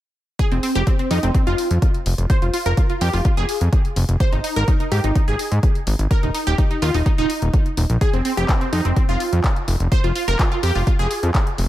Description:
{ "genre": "progressive house", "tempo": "126 BPM", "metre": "4/4", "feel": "straight", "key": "F minor", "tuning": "A4 = 439 Hz", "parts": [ { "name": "wide unison pluck", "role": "arpeggios", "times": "0.4-11.7 s", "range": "C4 to C5", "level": "-23 LUFS", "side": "right 1 dB", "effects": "phaser, sidechain pumping, dub echo" }, { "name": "deep house drum kit", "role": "drums", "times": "0.4-11.7 s", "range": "handclaps, hi-hat", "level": "-29 LUFS", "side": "left 1 dB", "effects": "none" }, { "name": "electronic kick drum", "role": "drums", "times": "0.4-11.4 s", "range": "none", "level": "-18 LUFS", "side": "equal", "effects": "none" }, { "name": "fat analog bass", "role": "bass", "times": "0.5-11.7 s", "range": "Eb1 to Ab2", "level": "-19 LUFS", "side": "equal", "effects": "sidechain pumping" }, { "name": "congas", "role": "percussion", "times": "7.8-7.9 s", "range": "none", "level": "-30 LUFS", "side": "right 1 dB", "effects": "overdrive, sidechain pumping on perc" } ], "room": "digital ambience", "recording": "none", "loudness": "-16 LUFS", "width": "side -14 dB against mid", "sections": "0.4-11.7 A section", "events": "none", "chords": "0.4 Fm; 4.2 Ab5; 6.1 Eb5; 8.0 Fm", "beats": "| 0.39 0.87 1.34 1.82 | 2.30 2.77 3.25 3.73 | 4.20 4.68 5.16 5.63 | 6.11 6.58 7.06 7.54 | 8.01 8.49 8.96 9.44 | 9.92 10.39 10.87 11.35" }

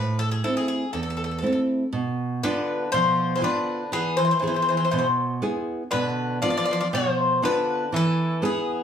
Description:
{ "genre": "greek folk, Greek bouzouki band", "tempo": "120 BPM", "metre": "4/4", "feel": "straight", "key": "unclear", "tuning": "A4 = 440 Hz", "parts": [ { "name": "Greek bouzouki", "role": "melody", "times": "0.0-8.8 s", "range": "G#4 to D5", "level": "-25 LUFS", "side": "left 3 dB", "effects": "plate reverb" }, { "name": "nylon-string guitar", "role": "accompaniment", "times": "0.0-8.8 s", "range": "E2 to G#4", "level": "-26 LUFS", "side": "right 2 dB", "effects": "none" }, { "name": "Greek bouzouki", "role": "second line", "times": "2.4-8.8 s", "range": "D3 to B3", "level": "-27 LUFS", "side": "right 1 dB", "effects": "none" } ], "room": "wet studio reverb, RT60 0.6 s", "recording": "studio reverb", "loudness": "-22 LUFS", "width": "side -8 dB against mid", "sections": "0.0-1.9 A section; 1.9-8.8 B section", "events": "none", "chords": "0.0 Am; 1.9 Bdim; 3.9 E; 5.9 Bdim; 7.9 E", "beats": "0.42 0.93 1.43 | 1.93 2.42 2.92 3.42 | 3.92 4.42 4.92 5.42 | 5.92 6.42 6.92 7.42 | 7.93 8.43" }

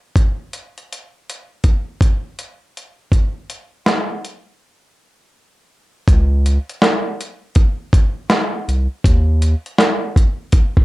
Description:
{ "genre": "lo-fi hip hop", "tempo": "81 BPM", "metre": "4/4", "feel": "swing 64% on 16ths", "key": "unclear", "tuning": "A4 = 442 Hz", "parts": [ { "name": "dusty soul sampler-style drum kit", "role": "drums", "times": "0.2-10.8 s", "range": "hi-hat, kick drum, snare drum", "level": "-14 LUFS", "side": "equal", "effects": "none" }, { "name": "round analog bass", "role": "bass", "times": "6.1-9.5 s", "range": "C2 to Eb2", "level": "-14 LUFS", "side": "equal", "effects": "none" } ], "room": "light reverb", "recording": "none", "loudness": "-15 LUFS", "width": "side -19 dB against mid", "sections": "0.0-6.1 A section; 6.1-10.8 B section", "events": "break 4.6-6.1", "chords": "none", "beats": "| 0.15 0.90 1.64 2.38 | 3.12 3.86 4.60 5.34 | 6.08 6.82 7.56 8.30 | 9.04 9.78 10.53" }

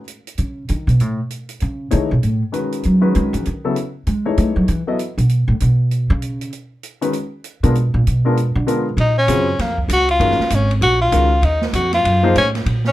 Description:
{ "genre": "modal jazz", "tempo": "195 BPM", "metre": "4/4", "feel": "swing 63% on 8ths", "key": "F# dorian, Eb dorian from 9.0 s", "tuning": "A4 = 440 Hz", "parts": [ { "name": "open jazz drum kit", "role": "drums", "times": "0.1-12.9 s", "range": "hi-hat, kick drum, ride cymbal, snare drum", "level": "-29 LUFS", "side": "right 2 dB", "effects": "none" }, { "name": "upright bass", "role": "bass", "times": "0.4-12.9 s", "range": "Gb1 to A3", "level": "-17 LUFS", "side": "right 1 dB", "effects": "none" }, { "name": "warm concert grand piano", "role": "accompaniment", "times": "1.9-5.0, 7.0-12.3 s", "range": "C#3 to D#5", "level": "-20 LUFS", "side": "left 3 dB", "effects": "none" }, { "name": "clear tenor saxophone", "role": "melody", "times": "9.0-12.9 s", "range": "Bb3 to Gb4", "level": "-16 LUFS", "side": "left 1 dB", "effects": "none" } ], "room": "light reverb", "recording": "none", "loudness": "-15 LUFS", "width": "side -15 dB against mid", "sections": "0.0-9.0 A section; 9.0-12.9 A section", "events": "upright bass solo 0.0-9.0; tenor saxophone solo 9.0-12.9", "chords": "0.0 F#m69; 4.1 Aadd9; 7.7 A#7b9; 9.0 Ebm9", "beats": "0.07 | 0.38 0.69 0.99 1.30 | 1.61 1.92 2.22 2.53 | 2.84 3.14 3.45 3.76 | 4.07 4.37 4.68 4.99 | 5.29 5.60 5.91 6.21 | 6.52 6.83 7.13 7.44 | 7.75 8.05 8.36 8.67 | 8.98 9.28 9.59 9.90 | 10.20 10.51 10.82 11.12 | 11.43 11.74 12.04 12.35 | 12.66" }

